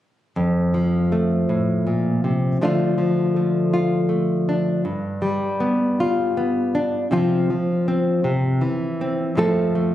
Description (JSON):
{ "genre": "folk, solo fingerstyle acoustic guitar", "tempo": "53 BPM (dotted quarters)", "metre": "6/8", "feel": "straight", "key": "F major", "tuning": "A4 = 441 Hz", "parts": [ { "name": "nylon-string guitar", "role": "solo", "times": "0.4-9.9 s", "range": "F2 to A4", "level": "-18 LUFS", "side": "equal", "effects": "none" } ], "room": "moderate recital hall reverb, RT60 1.4 s", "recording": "recorded on a phone in the room, club reverb, compression", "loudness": "-18 LUFS", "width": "side -12 dB against mid", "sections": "0.4-9.4 A section", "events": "none", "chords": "0.4 F; 2.6 Dm; 4.9 G; 7.1 Csus4; 8.2 C; 9.4 F", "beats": "| 0.36 1.49 | 2.62 3.75 | 4.87 5.99 | 7.11 8.24 | 9.38" }